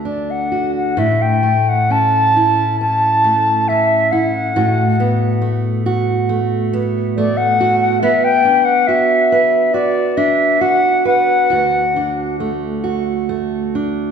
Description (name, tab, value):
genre	celtic folk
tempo	68 BPM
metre	4/4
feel	uneven beats, rubato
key	A major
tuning	A4 = 437 Hz
part	fingerpicked steel-string acoustic guitar	accompaniment	0.0-14.1 s	D2 to B4	-17 LUFS	right 2 dB	none
part	mellow wooden flute	melody	0.1-12.4 s	D5 to A5	-14 LUFS	left 1 dB	none
room	wet recital hall reverb, RT60 1.6 s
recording	recorded in a church or concert hall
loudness	-13 LUFS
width	side -7 dB against mid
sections	1.0-14.1 A section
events	none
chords	0.0 D; 1.0 A; 4.6 B7(no3)/A; 8.0 Bm; 11.5 D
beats	0.05 | 0.98 1.89 2.80 3.68 | 4.56 5.43 6.30 7.16 | 8.01 8.87 9.73 10.60 | 11.49 12.39 13.29